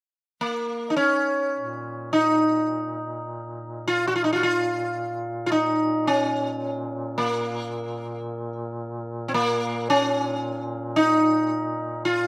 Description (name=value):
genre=caucasian folk, Caucasian lament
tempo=55 BPM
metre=4/4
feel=rubato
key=Bb minor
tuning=A4 = 440 Hz
part: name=sitar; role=melody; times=0.4-12.3 s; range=Bb3 to Gb4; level=-25 LUFS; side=equal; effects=none
part: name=warm duduk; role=drone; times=1.6-12.3 s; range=Bb2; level=-36 LUFS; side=equal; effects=none
room=little or no reverb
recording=recorded outdoors, with no room sound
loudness=-25 LUFS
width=mono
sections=0.0-1.6 A section; 1.6-12.3 B section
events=none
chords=none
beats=0.41 | 1.55 2.73 3.87 4.98 | 6.08 7.17 8.26 9.35 | 10.42 11.50